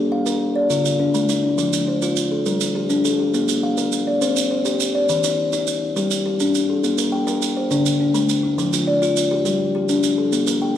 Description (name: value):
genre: southern african traditional, mbira-style interlocking cycle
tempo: 137 BPM (dotted quarters)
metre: 12/8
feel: straight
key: unclear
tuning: A4 = 440 Hz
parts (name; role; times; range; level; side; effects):
- kalimba; arpeggios; 0.0-10.8 s; D3-29c to G5; -18 LUFS; left 2 dB; none
- maracas; percussion; 0.3-10.6 s; none; -26 LUFS; right 9 dB; none
room: wet recital hall reverb, RT60 1.6 s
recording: recorded in a church or concert hall, lossy compression artefacts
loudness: -17 LUFS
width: side -10 dB against mid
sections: 0.0-4.2 A section; 4.2-10.8 B section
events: none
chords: 0.0 Bb; 0.7 Dm; 1.6 F; 2.5 Gm; 3.3 Bb; 4.2 C5; 5.1 N.C.; 6.0 G5; 6.8 Gmadd9/Bb; 7.7 D5; 8.6 Ebmaj9/F; 9.5 G5